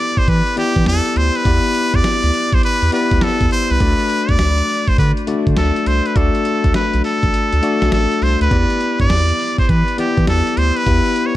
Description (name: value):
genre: R&B, new jack swing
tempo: 102 BPM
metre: 4/4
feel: swing 65% on 16ths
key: E minor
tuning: A4 = 440 Hz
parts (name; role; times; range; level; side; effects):
- trumpet with straight mute; melody; 0.0-11.4 s; G4 to D5; -19 LUFS; right 1 dB; tape echo
- bell-like tine electric piano; accompaniment; 0.0-11.4 s; A3 to D5; -20 LUFS; left 4 dB; none
- dusty soul sampler-style drum kit; drums; 0.2-11.3 s; hi-hat, kick drum, snare drum; -19 LUFS; right 1 dB; none
- round analog bass; bass; 0.3-11.0 s; A1 to E3; -17 LUFS; right 1 dB; none
room: light reverb, digital ambience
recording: dark, warm production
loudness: -13 LUFS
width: side -14 dB against mid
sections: 0.0-11.4 A section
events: kick muted 7.3-8.5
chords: 0.0 Em7; 3.8 D; 8.5 Em7